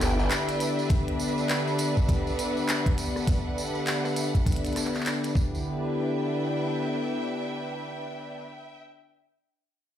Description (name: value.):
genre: glitch hop.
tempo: 101 BPM.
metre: 4/4.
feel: swing 61% on 16ths.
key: E minor.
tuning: A4 = 440 Hz.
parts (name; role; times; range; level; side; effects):
warm analog pad; sustained chords; 0.0-8.4 s; D3 to G4; -30 LUFS; left 1 dB; chorus, sidechain pumping.
glitchy drum kit; drums; 0.0-5.3 s; handclaps, hi-hat, rim click; -31 LUFS; equal; none.
tambourine; percussion; 0.0-5.6 s; none; -38 LUFS; right 4 dB; none.
bright studio string section; texture; 0.0-8.8 s; D4 to G5; -31 LUFS; equal; sidechain pumping.
electronic kick drum; drums; 0.9-5.5 s; none; -24 LUFS; equal; none.
room: moderate small room reverb, RT60 0.5 s.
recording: played on a big sound system in a bare room, large studio reverb.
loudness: -25 LUFS.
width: side -10 dB against mid.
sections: 0.0-5.7 A section; 5.7-8.0 B section.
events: none.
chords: 0.0 Em7.